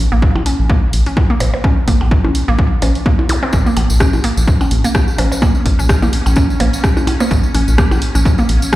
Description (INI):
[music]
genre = minimal techno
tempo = 127 BPM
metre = 4/4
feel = swing 56% on 16ths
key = unclear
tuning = A4 = 440 Hz
[part]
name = rubbery square bass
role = bass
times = 0.0-8.6 s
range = Bb1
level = -15 LUFS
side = equal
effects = sidechain pumping
[part]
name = hollow square pluck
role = riff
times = 0.1-8.8 s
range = Bb3 to Db4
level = -20 LUFS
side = right 1 dB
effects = chorus, sidechain pumping, dub echo
[part]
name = electronic kick drum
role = drums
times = 0.2-8.8 s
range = none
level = -15 LUFS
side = equal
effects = overdrive
[part]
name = percussion blips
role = percussion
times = 0.4-8.8 s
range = none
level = -24 LUFS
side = right 1 dB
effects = dub echo
[part]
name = punchy analog drum machine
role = drums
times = 0.5-8.8 s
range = hi-hat, rim click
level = -23 LUFS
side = equal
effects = overdrive
[part]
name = zap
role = sound effects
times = 3.3-3.4 s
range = none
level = -25 LUFS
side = equal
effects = none
[part]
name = tambourine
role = percussion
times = 3.5-8.8 s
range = none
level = -28 LUFS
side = equal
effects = none
[part]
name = swarming drone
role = texture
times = 4.8-8.8 s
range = Db4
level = -26 LUFS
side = left 1 dB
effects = built-in reverb, sidechain pumping
[sound]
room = light reverb, digital ambience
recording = played on a big sound system in a bare room, large studio reverb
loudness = -11 LUFS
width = side -16 dB against mid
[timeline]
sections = 0.0-8.8 A section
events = none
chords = none